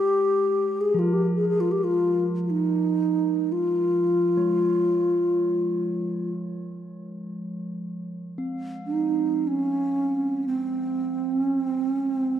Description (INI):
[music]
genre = world meditative, free-time meditation music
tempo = free time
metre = none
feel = none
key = F minor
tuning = A4 = 440 Hz
[part]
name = hollow low xiao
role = melody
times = 0.0-12.4 s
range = C4 to Ab4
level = -22 LUFS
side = equal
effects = none
[part]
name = bronze singing bowl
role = texture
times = 0.0-12.4 s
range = F3 to C4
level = -30 LUFS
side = equal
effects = none
[sound]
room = wet scoring stage reverb, RT60 1.8 s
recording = dark, warm production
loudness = -22 LUFS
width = side -10 dB against mid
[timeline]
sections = 0.0-12.4 A section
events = none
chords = none